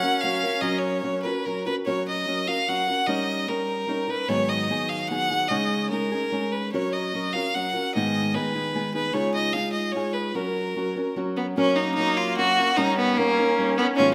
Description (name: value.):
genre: mexican folk, mariachi.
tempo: 148 BPM.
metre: 3/4.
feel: straight.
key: F# major.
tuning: A4 = 440 Hz.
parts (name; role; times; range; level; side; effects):
clear violin; melody; 0.0-14.1 s; A#3 to F#5; -26 LUFS; equal; none.
clear trumpet; second line; 0.0-1.7, 11.6-14.1 s; A#3 to E#4; -33 LUFS; equal; none.
nylon-string guitar; accompaniment; 0.0-14.1 s; G#2 to A#4; -29 LUFS; equal; none.
room: wet recital hall reverb, RT60 1.4 s.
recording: none.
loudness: -25 LUFS.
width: mono.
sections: 0.0-1.9 A section; 1.9-11.6 B section; 11.6-14.1 B section.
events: none.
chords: 0.0 F#; 3.1 D#7/G; 4.3 G#m7; 5.5 C#sus2; 6.7 F#; 8.0 G#m; 9.2 C#add9; 10.4 F#; 12.8 D#7/G.